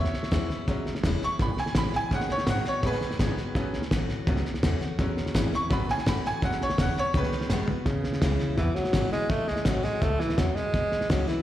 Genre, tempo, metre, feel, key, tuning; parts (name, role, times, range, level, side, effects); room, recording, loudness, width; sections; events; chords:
rockabilly; 167 BPM; 4/4; straight; E major; A4 = 440 Hz
picked steel-string acoustic guitar; accompaniment; 0.0-11.4 s; E2 to F#4; -34 LUFS; left 5 dB; plate reverb, slapback echo
tack piano; accompaniment; 0.0-7.9 s; D#3 to C#6; -30 LUFS; right 1 dB; plate reverb, slapback echo
upright bass; bass; 0.0-11.3 s; E1 to B2; -31 LUFS; equal
cloth-damped thuddy drum kit; drums; 0.0-11.3 s; hi-hat, kick drum, snare drum, toms; -28 LUFS; equal
breathy tenor saxophone; melody; 7.9-11.4 s; C#3 to A3; -28 LUFS; right 1 dB; plate reverb, slapback echo, analog delay
light reverb; live gig heard through the venue's PA, recital hall reverb; -24 LUFS; side -13 dB against mid
0.0-7.9 A section; 7.9-11.4 B section
honky-tonk piano solo 0.0-7.9; drum fill 7.5-7.9
0.0 E6; 2.1 B6; 3.6 A6; 5.0 E6; 5.7 A6; 6.4 E6; 7.1 B6; 7.9 E6; 9.3 A6; 10.7 E6